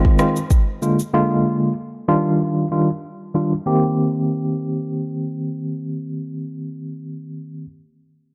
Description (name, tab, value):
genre	afrobeats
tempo	95 BPM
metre	4/4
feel	swing 55% on 16ths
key	C minor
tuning	A4 = 437 Hz
part	tine electric piano	accompaniment	0.0-7.7 s	D3 to G4	-22 LUFS	equal	medium tremolo, low-pass filter
part	afro-pop drum kit	drums	0.0-1.1 s	kick drum, rim click, shaker	-19 LUFS	equal	none
room	light reverb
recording	dark, warm production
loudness	-21 LUFS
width	mono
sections	0.0-3.7 A section; 3.7-6.2 B section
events	filter sweep on tine electric piano 0.0-3.7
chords	0.0 Fm7; 0.8 Bb7; 2.1 Ebmaj9; 3.7 Cm7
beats	0.51 | 1.14 1.77 2.40 3.03 | 3.66 4.29 4.93 5.56